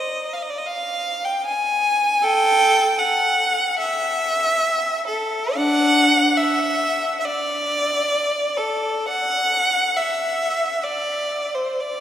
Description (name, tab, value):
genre	classical, free, expressive piece for unaccompanied violin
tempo	55-78 BPM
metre	4/4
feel	rubato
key	unclear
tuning	A4 = 440 Hz
part	clear violin	solo	0.0-12.0 s	D4 to Ab5	-18 LUFS	equal	none
room	wet cathedral reverb, RT60 5.4 s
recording	heard from further back in the room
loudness	-18 LUFS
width	side -10 dB against mid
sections	0.0-12.0 A section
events	none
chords	none